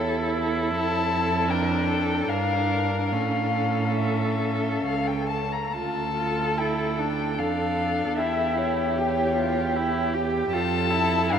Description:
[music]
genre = classical, slow romantic movement for string quartet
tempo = 68-80 BPM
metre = 3/4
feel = rubato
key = D minor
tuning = A4 = 441 Hz
[part]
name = muted violin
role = melody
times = 0.0-11.4 s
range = C#5 to Bb5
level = -28 LUFS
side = left 6 dB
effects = none
[part]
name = muted violin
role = second line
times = 0.0-11.4 s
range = G4 to Bb4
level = -30 LUFS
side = left 1 dB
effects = none
[part]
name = muted viola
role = accompaniment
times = 0.0-11.4 s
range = C#4 to G4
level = -28 LUFS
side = right 1 dB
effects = none
[part]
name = muted cello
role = bass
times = 0.0-11.4 s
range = C#2 to A2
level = -28 LUFS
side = right 5 dB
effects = none
[sound]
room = wet huge ambient reverb, RT60 8.4 s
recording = in a vast, echoing space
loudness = -22 LUFS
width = side -8 dB against mid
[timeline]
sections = 0.0-11.4 A section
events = none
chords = 0.0 A/E; 0.7 Dm/F; 2.3 Gm; 3.1 A; 5.7 Dm; 8.2 Em6; 10.5 Fmaj7

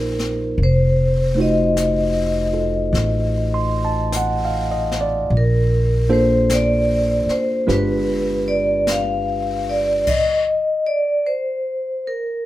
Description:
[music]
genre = jazz ballad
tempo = 50 BPM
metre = 4/4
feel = swing 66% on 8ths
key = unclear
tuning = A4 = 439 Hz
[part]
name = vibraphone with medium hard mallets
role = melody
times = 0.0-12.5 s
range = Bb4 to F5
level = -20 LUFS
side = left 1 dB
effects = none
[part]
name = tine electric piano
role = accompaniment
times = 0.0-10.1 s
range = Ab3 to C6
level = -21 LUFS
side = right 1 dB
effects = none
[part]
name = upright bass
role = bass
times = 0.0-10.0 s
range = F1 to Bb1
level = -21 LUFS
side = equal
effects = none
[part]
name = jazz brush drum kit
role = drums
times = 0.2-10.6 s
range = brushed snare drum, crash cymbal, hi-hat, kick drum, snare drum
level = -30 LUFS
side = left 2 dB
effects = none
[sound]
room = light reverb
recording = band playing live in one room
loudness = -16 LUFS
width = side -15 dB against mid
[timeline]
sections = 0.0-12.5 A section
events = none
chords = 0.0 Ebmaj9; 0.6 F7b9; 5.3 Bbmaj9; 7.7 G7b9; 10.1 N.C.

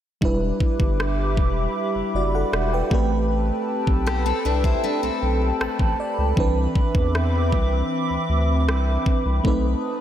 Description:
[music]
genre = contemporary R&B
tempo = 78 BPM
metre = 4/4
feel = straight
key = E minor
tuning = A4 = 440 Hz
[part]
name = FM electric piano with soft pad layer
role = accompaniment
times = 0.2-10.0 s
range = E3 to A5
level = -26 LUFS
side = right 2 dB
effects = chorus
[part]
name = hollow soft pad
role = sustained chords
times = 0.2-10.0 s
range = C4 to D#6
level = -26 LUFS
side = equal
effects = chorus, sidechain pumping
[part]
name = saturated sub bass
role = bass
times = 0.2-9.8 s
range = E1 to E2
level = -23 LUFS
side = equal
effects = none
[part]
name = trap drum kit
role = drums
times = 0.2-9.6 s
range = kick drum, rim click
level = -23 LUFS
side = equal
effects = none
[part]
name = picked steel-string acoustic guitar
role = arpeggios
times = 4.1-6.1 s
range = B3 to C5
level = -27 LUFS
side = left 6 dB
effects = tape echo
[sound]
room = moderate lush hall reverb, RT60 2.8 s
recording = dreamy mix soaked in reverb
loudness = -19 LUFS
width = side -10 dB against mid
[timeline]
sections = 0.2-10.0 A section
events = FM electric piano fill 5.2-6.4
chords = 0.2 Em7; 2.9 Am9; 6.4 Cmaj9; 9.4 B7b9

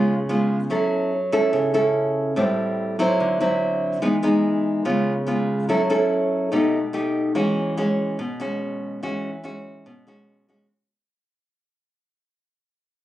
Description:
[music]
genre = bossa nova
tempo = 144 BPM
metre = 4/4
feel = straight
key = E major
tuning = A4 = 437 Hz
[part]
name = nylon-string guitar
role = solo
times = 0.0-10.7 s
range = A2 to A4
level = -20 LUFS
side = equal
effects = none
[sound]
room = moderate studio reverb, RT60 0.6 s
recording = recorded on a phone in the room, club reverb, compression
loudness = -20 LUFS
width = side -14 dB against mid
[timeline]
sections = 0.0-7.4 A section; 7.4-10.7 B section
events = fade-out 7.4-10.7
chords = 0.0 C#7; 0.7 F#m7; 2.4 Am7; 3.2 D9; 4.0 Emaj7; 4.9 C#7; 5.7 F#m7; 6.5 Baug7; 7.4 E69

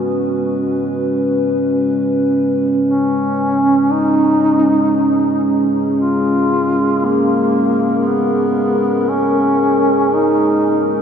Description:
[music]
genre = dark ambient drone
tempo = free time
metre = none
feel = none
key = G# dorian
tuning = A4 = 439 Hz
[part]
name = dark analog pad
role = sustained chords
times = 0.0-11.0 s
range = G#3 to B4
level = -15 LUFS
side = equal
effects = chorus
[part]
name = mellow duduk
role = melody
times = 2.9-10.9 s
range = A#3 to E#4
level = -17 LUFS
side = equal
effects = ping-pong delay
[sound]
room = wet huge ambient reverb, RT60 7.5 s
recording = dreamy mix soaked in reverb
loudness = -13 LUFS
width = side -7 dB against mid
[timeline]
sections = 0.0-11.0 A section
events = none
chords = 0.0 G#m7

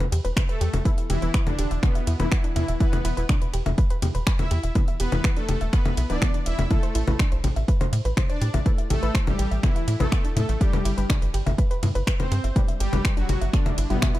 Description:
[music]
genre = melodic techno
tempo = 123 BPM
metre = 4/4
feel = straight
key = E minor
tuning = A4 = 440 Hz
[part]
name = woody wave-folded pluck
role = arpeggios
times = 0.0-14.2 s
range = B3 to E5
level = -34 LUFS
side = equal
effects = chorus, sidechain pumping, ping-pong delay
[part]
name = deep house drum kit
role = drums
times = 0.0-14.2 s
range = congas, finger snaps, hi-hat, ride cymbal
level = -29 LUFS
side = left 2 dB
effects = none
[part]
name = tight sequencer bass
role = bass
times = 0.1-14.0 s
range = D1 to A2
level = -24 LUFS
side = equal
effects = sidechain pumping
[part]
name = electronic kick drum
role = drums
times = 0.4-14.1 s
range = none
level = -22 LUFS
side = equal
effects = overdrive
[part]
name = soft supersaw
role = melody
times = 0.5-14.1 s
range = B2 to E5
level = -32 LUFS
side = equal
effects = sidechain pumping, ping-pong delay
[part]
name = synth brass stab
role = stabs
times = 0.9-14.2 s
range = E3 to A4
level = -35 LUFS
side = left 4 dB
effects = chorus, cassette tape, sidechain pumping, ping-pong delay
[sound]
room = digital ambience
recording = dark, warm production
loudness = -21 LUFS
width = side -15 dB against mid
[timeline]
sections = 0.0-14.2 A section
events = none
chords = 0.0 E5; 6.7 A5; 10.6 G

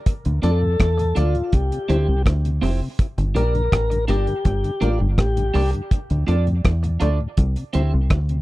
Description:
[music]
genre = roots reggae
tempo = 82 BPM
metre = 4/4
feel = straight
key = G dorian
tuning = A4 = 441 Hz
[part]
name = deep reggae drum kit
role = drums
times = 0.1-8.4 s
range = hi-hat, kick drum, rim click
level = -20 LUFS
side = equal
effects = none
[part]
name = mellow tonewheel organ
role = accompaniment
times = 0.3-8.4 s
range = D2 to E4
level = -28 LUFS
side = left 2 dB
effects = slow rotary speaker, tape echo
[part]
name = deep dub fingered electric bass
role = bass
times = 0.3-8.4 s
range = F1 to F2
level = -19 LUFS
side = equal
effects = tube saturation
[part]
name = mellow tonewheel organ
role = melody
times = 0.4-5.7 s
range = F4 to Bb4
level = -26 LUFS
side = left 2 dB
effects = slow rotary speaker, dub echo
[part]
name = clean electric guitar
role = accompaniment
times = 0.4-7.9 s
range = C4 to D5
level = -30 LUFS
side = right 6 dB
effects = analog chorus, dub echo
[sound]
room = little or no reverb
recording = dry, close 1970s-style studio recording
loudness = -18 LUFS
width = side -18 dB against mid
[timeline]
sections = 0.0-8.4 A section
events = none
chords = 0.1 Dm; 1.5 C; 3.0 Gm; 5.9 Dm; 7.4 C

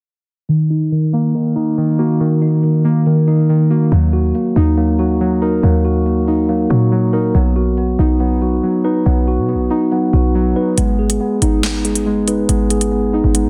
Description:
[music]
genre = hip hop, drill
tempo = 140 BPM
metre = 4/4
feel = half-time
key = Eb minor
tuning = A4 = 440 Hz
[part]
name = muted felt-like synth keys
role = accompaniment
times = 0.5-13.5 s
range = Eb3 to Eb4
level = -20 LUFS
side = equal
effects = chorus, low-pass filter
[part]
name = mellow tine electric piano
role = arpeggios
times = 0.5-13.5 s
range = Eb3 to B4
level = -19 LUFS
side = equal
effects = low-pass filter, delay
[part]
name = short 808-style bass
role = bass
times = 3.9-13.5 s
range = Ab1 to B2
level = -19 LUFS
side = equal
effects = none
[part]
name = drill drum kit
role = drums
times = 10.8-13.4 s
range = handclaps, hi-hat, snare drum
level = -21 LUFS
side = equal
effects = vintage 12-bit sampler grit
[sound]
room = light reverb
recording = dense, heavily limited modern master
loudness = -15 LUFS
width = mono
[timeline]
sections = 0.5-3.9 A section; 3.9-13.5 B section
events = filter sweep 0.5-3.9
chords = 0.5 Ebm; 7.3 B; 10.8 Abm

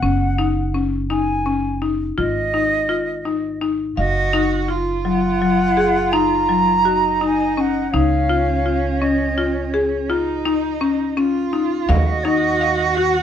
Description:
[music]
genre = contemporary instrumental, chamber music in an uneven meter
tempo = 167 BPM (eighths)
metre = 11/8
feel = straight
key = unclear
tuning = A4 = 439 Hz
[part]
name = bright wooden flute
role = melody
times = 0.0-13.2 s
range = C#5 to A#5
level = -21 LUFS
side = right 1 dB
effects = none
[part]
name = buzzing marimba with hard mallets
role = arpeggios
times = 0.0-13.2 s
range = F#3 to E#5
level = -20 LUFS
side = left 4 dB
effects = none
[part]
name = upright bass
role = bass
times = 0.0-13.2 s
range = F#1 to D#2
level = -24 LUFS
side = right 2 dB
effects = none
[part]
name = dark cello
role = second line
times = 4.0-13.2 s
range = C#4 to F#4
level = -23 LUFS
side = right 6 dB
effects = none
[part]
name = frame drum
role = percussion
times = 11.9-12.8 s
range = none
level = -25 LUFS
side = left 4 dB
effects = none
[sound]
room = light reverb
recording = dark, warm production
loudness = -16 LUFS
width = side -9 dB against mid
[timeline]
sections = 0.0-4.0 A section; 4.0-13.2 B section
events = none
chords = 0.0 F#sus2; 2.2 G#5; 4.0 F#6; 7.9 C#add9; 11.9 D#m

